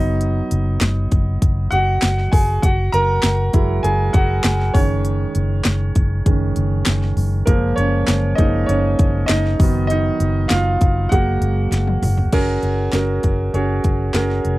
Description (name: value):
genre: piano-driven pop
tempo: 99 BPM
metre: 4/4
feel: straight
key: F# major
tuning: A4 = 445 Hz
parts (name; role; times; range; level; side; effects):
- clear concert grand piano; accompaniment; 0.0-14.6 s; D#3 to A#5; -20 LUFS; right 2 dB; none
- vintage muted fingered electric bass; bass; 0.0-14.6 s; E#1 to F#1; -19 LUFS; equal; none
- house drum kit; drums; 0.2-14.6 s; crash cymbal, handclaps, hi-hat, kick drum, snare drum, toms; -19 LUFS; equal; none
room: little or no reverb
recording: dry, close 1970s-style studio recording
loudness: -15 LUFS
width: side -18 dB against mid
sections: 0.0-12.3 A section; 12.3-14.6 B section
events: grand piano solo 0.0-12.3; drum fill 11.7-12.3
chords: 0.0 B/F#; 2.6 Eadd9/F#; 4.7 C#sus2/F#; 7.5 F#maj7; 9.6 B/F#; 11.1 F#add9